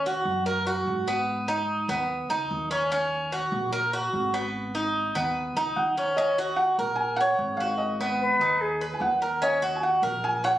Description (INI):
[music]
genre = latin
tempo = 147 BPM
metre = 4/4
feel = straight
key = Eb minor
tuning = A4 = 445 Hz
[part]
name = Cuban tres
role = arpeggios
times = 0.0-10.6 s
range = Cb4 to Db5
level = -26 LUFS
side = right 1 dB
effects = none
[part]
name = upright bass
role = bass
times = 0.0-10.6 s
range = Ab1 to Ab2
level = -35 LUFS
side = equal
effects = none
[part]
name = felt-muted upright piano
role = melody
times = 5.8-10.6 s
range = Eb5 to Ab5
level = -26 LUFS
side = right 1 dB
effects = none
[part]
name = concert flute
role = second line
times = 8.2-8.8 s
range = Ab4 to Cb5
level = -23 LUFS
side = left 1 dB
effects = none
[sound]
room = moderate studio ambience, RT60 0.5 s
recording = recorded on a phone in the room, studio reverb, compression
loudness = -24 LUFS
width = side -13 dB against mid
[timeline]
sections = 0.0-6.2 A section; 6.2-10.6 B section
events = none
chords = 0.0 Ebm; 1.3 Abm; 2.9 Ebm7; 4.5 Abm7; 6.2 Ebm7; 7.8 Abm7; 9.4 Ebm7